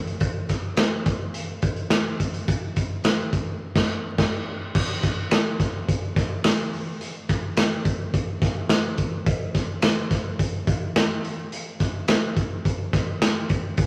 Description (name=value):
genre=soul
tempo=106 BPM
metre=4/4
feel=straight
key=none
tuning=none
part: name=raw garage drum kit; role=drums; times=0.1-13.9 s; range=crash cymbal, hi-hat, kick drum, snare drum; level=-24 LUFS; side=equal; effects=none
part: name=finger snaps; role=percussion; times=0.8-13.3 s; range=none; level=-31 LUFS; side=equal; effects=none
room=moderate studio reverb, RT60 0.5 s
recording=vinyl crackle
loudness=-24 LUFS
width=mono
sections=0.0-4.7 A section; 4.7-13.9 B section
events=band accent 3.6-4.7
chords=none